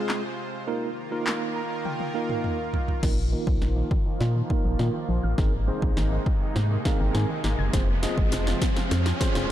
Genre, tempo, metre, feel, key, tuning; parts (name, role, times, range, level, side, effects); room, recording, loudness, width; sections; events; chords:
dance-pop; 102 BPM; 4/4; straight; A4 = 442 Hz
tine electric piano; accompaniment; 0.0-9.5 s; Ab3 to Bb5; -31 LUFS; right 2 dB; fast stereo tremolo, sidechain pumping, low-pass filter
supersaw pad; sustained chords; 0.0-9.5 s; C3 to C5; -33 LUFS; right 1 dB; sidechain pumping, low-pass filter
punchy analog drum machine; drums; 0.1-9.5 s; crash cymbal, handclaps, hi-hat, kick drum, snare drum, toms; -26 LUFS; equal
glassy wavetable pluck; arpeggios; 3.0-9.5 s; Eb3 to Ab6; -36 LUFS; left 1 dB; chorus, sidechain pumping, low-pass filter, tape echo
organ-like FM bass; bass; 3.0-9.5 s; F1 to Bb2; -25 LUFS; equal; sidechain pumping
riser; sound effects; 5.0-9.5 s; -35 LUFS; right 1 dB
digital ambience; dark, warm production; -23 LUFS; side -12 dB against mid
0.0-3.0 A section; 3.0-9.5 B section
tine electric piano fill 1.3-3.0, 6.6-7.7; drum fill 1.9-3.0, 3.0-9.5; build-up 3.0-9.5; filter sweep 3.0-9.5; riser 5.0-9.5
0.0 Fm; 0.7 Bbsus4; 5.4 Abadd9; 7.7 Fm